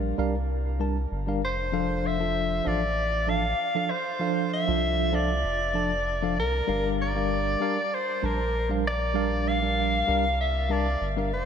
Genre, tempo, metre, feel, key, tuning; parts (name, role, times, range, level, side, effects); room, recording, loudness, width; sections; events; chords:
sunset chillout; 97 BPM; 4/4; swing 53% on 16ths; G dorian; A4 = 440 Hz
bright tine electric piano; accompaniment; 0.0-11.3 s; F3 to A5; -28 LUFS; moving between left 6 dB and right 8 dB; medium stereo tremolo, auto-pan, shimmer reverb, diffuse ambient delay
round analog bass; bass; 0.0-11.5 s; F1 to C2; -29 LUFS; equal
clear soprano saxophone; melody; 1.4-11.5 s; Bb4 to F5; -27 LUFS; left 1 dB; shimmer reverb, diffuse ambient delay
wet plate reverb, RT60 3.5 s; dreamy mix soaked in reverb; -24 LUFS; side -7 dB against mid
0.0-6.7 A section; 6.7-11.5 A section
0.0 Gm7; 1.4 F6; 6.7 Gm7